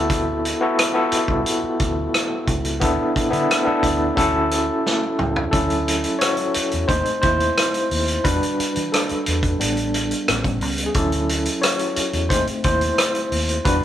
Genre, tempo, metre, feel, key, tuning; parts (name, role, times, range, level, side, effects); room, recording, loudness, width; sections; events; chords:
lush 1970s-style soul; 88 BPM; 4/4; straight; D major; A4 = 441 Hz
overdriven tine electric piano; accompaniment; 0.0-13.8 s; F#3 to C#5; -20 LUFS; equal; fast tremolo
vintage muted fingered electric bass; bass; 0.0-13.8 s; A1 to E3; -26 LUFS; equal
vintage drum kit; drums; 0.1-13.8 s; hi-hat, kick drum, rim click, snare drum, toms; -22 LUFS; equal
light reverb; band playing live in one room; -18 LUFS; side -11 dB against mid
0.0-5.5 A section; 5.5-13.8 B section
drum fill 4.9-5.5; tine electric piano solo 5.5-13.8
0.0 D69; 2.8 Asus24/D; 4.2 Dmaj7; 6.9 Adim/Eb; 8.2 Em9; 9.6 A9sus4; 10.3 A7; 11.0 Dmaj7; 12.3 Adim/Eb